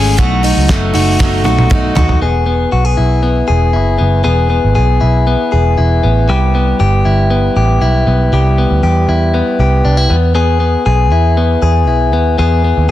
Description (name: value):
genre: jangly indie pop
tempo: 118 BPM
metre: 4/4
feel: straight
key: unclear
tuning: A4 = 439 Hz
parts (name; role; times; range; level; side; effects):
- picked steel-string acoustic guitar; accompaniment; 0.0-2.2 s; B2 to E4; -17 LUFS; right 8 dB; none
- direct-recorded clean electric guitar; arpeggios; 0.0-12.9 s; E3 to G#4; -14 LUFS; left 3 dB; spring reverb, analog delay
- vintage muted picked electric bass; bass; 0.0-12.9 s; E1 to E2; -12 LUFS; right 1 dB; none
- cloth-damped thuddy drum kit; drums; 0.2-2.2 s; hi-hat, kick drum, snare drum, toms; -14 LUFS; right 1 dB; none
room: light reverb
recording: dense, heavily limited modern master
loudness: -10 LUFS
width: side -13 dB against mid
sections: 0.0-2.2 A section; 2.2-12.9 B section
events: drum fill 1.2-2.2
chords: 0.2 B7; 2.2 E; 6.3 Cmaj7; 10.1 E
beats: | 0.18 0.69 1.20 1.71 | 2.22 2.73 3.23 3.74 | 4.25 4.76 5.27 5.78 | 6.29 6.80 7.30 7.81 | 8.32 8.83 9.34 9.85 | 10.36 10.86 11.37 11.88 | 12.39 12.89